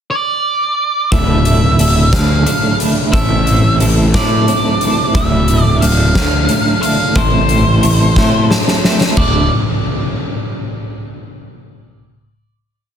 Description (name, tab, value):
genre	quiet-loud alternative rock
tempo	60 BPM (dotted quarters)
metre	6/8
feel	straight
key	D minor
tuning	A4 = 440 Hz
part	octave-fuzz lead guitar	melody	0.1-9.5 s	C5 to F5	-18 LUFS	right 1 dB	distortion
part	twelve-string electric guitar	arpeggios	1.1-9.5 s	D2 to A4	-18 LUFS	right 2 dB	tremolo
part	fuzz picked electric bass	bass	1.1-9.5 s	D1 to A2	-14 LUFS	equal	overdrive
part	huge arena drum kit	drums	1.1-9.3 s	crash cymbal, hi-hat, kick drum, snare drum	-15 LUFS	left 1 dB	none
room	light reverb, studio ambience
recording	dense, heavily limited modern master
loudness	-11 LUFS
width	side -8 dB against mid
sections	0.0-1.1 pickup bar; 1.1-9.2 verse; 9.2-11.2 final chord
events	drum fill 8.2-9.2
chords	0.0 N.C.; 1.1 Dmadd9; 3.1 Am; 5.1 Dmadd9; 7.2 Am; 9.2 Dsus2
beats	0.11 | 1.12 2.13 | 3.13 4.14 | 5.15 6.15 | 7.16 8.17 | 9.18